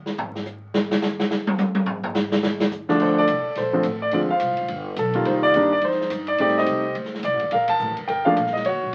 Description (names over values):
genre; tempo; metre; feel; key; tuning
jazz piano trio; 212 BPM; 4/4; swing 60% on 8ths; unclear; A4 = 440 Hz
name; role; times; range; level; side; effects
open jazz drum kit; drums; 0.1-8.9 s; crash cymbal, hi-hat, kick drum, ride cymbal, snare drum, toms; -28 LUFS; equal; none
warm concert grand piano; melody; 2.9-8.9 s; D3 to A5; -22 LUFS; equal; none
upright bass; bass; 3.0-8.9 s; F1 to A2; -35 LUFS; equal; none
room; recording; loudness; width
light reverb; very old 78 rpm record, vinyl crackle; -22 LUFS; mono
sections
0.0-3.0 A section; 3.0-8.9 B section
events
grand piano solo 0.0-3.0; drum solo 0.0-3.0; band accent 7.7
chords
0.0 N.C.; 3.0 Bbmaj9; 4.1 Dm7b5; 4.7 G7; 5.3 Cm7; 6.4 Am7b5; 7.0 D7; 7.5 Gm7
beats
0.18 0.47 | 0.75 1.03 1.31 1.59 | 1.87 2.16 2.44 2.72 | 3.00 3.28 3.57 3.85 | 4.13 4.41 4.70 4.98 | 5.26 5.54 5.83 6.11 | 6.39 6.67 6.96 7.24 | 7.52 7.80 8.09 8.37 | 8.65 8.93